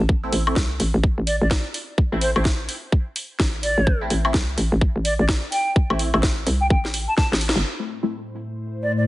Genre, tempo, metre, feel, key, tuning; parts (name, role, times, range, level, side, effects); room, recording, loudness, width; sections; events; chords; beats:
bass house; 127 BPM; 4/4; swing 61% on 16ths; A minor; A4 = 440 Hz
hollow knocking FM bass; bass; 0.0-7.6 s; G1 to C2; -22 LUFS; equal; overdrive, sidechain pumping
electronic kick drum; drums; 0.1-7.3 s; -19 LUFS; equal
band-passed chord stab; stabs; 0.2-8.1 s; A3 to E4; -28 LUFS; equal; phaser, wide subtle chorus, sidechain pumping, tape echo
garage drum kit; drums; 0.3-8.9 s; hi-hat, snare drum, woodblock; -25 LUFS; left 1 dB; low-pass filter on hats, low-pass filter on snare, low-pass filter on perc
hollow concert flute; melody; 1.3-9.0 s; C5 to A5; -24 LUFS; equal; tape echo
sweeping resonant pad; sustained chords; 7.6-9.1 s; A2 to C5; -25 LUFS; left 1 dB; chorus, sidechain pumping
light reverb, digital ambience; heavily compressed radio sound, nothing above 10.9 kHz; -19 LUFS; side -17 dB against mid
0.0-7.6 A section; 7.6-9.1 B section
drum fill 7.2-7.6; band accent 7.5
0.0 Am
| 0.09 0.56 1.03 1.51 | 1.98 2.45 2.92 3.40 | 3.87 4.34 4.81 5.29 | 5.76 6.23 6.70 7.18 | 7.65 8.12 8.59 9.06